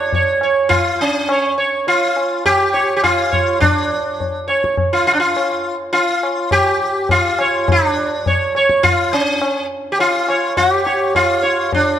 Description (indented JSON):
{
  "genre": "indian classical, Hindustani",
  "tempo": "103 BPM",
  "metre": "7/4",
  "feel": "straight",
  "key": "unclear",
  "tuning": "A4 = 437 Hz",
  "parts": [
    { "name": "sitar", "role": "melody", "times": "0.0-12.0 s", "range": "Db4 to Db5", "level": "-14 LUFS", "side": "right 1 dB", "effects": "none" },
    { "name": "tabla", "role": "percussion", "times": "0.1-11.9 s", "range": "none", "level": "-21 LUFS", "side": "left 2 dB", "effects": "none" }
  ],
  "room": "moderate recital hall reverb, RT60 1.8 s",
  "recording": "none",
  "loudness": "-14 LUFS",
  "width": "side -10 dB against mid",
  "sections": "0.0-12.0 A section",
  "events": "none",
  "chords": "none",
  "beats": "0.12 0.70 1.28 1.87 2.45 3.03 | 3.61 4.19 4.77 5.35 5.93 6.51 7.09 | 7.67 8.25 8.83 9.41 9.99 10.56 11.14 | 11.72"
}